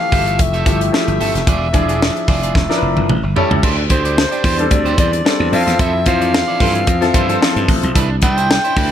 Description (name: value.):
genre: polished 1980s jazz-funk pop.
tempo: 111 BPM.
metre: 4/4.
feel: swing 54% on 16ths.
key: unclear.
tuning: A4 = 442 Hz.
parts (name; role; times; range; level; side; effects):
breathy soprano saxophone; melody; 0.0-8.9 s; C5 to G5; -20 LUFS; equal; none.
clear grand piano; accompaniment; 0.0-8.0 s; E3 to C5; -19 LUFS; left 3 dB; lush chorus.
electric guitar at the edge of break-up; riff; 0.0-8.9 s; D4 to E5; -23 LUFS; right 5 dB; wide subtle chorus.
slap bass; bass; 0.1-8.9 s; E1 to G2; -18 LUFS; equal; none.
tight funk drum kit; drums; 0.1-8.9 s; crash cymbal, hi-hat, kick drum, snare drum, toms; -17 LUFS; equal; none.
room: light reverb.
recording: none.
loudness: -12 LUFS.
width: side -10 dB against mid.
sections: 0.0-3.6 A section; 3.6-8.9 B section.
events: drum fill 2.6-3.6.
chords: 0.0 Fmaj9; 1.5 E7b9; 3.1 A7; 3.6 D7sus4; 5.5 Fmaj7; 8.0 Cmaj9.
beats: 0.39 0.93 | 1.47 2.01 2.55 3.09 | 3.63 4.17 4.71 5.25 | 5.79 6.33 6.87 7.42 | 7.96 8.50.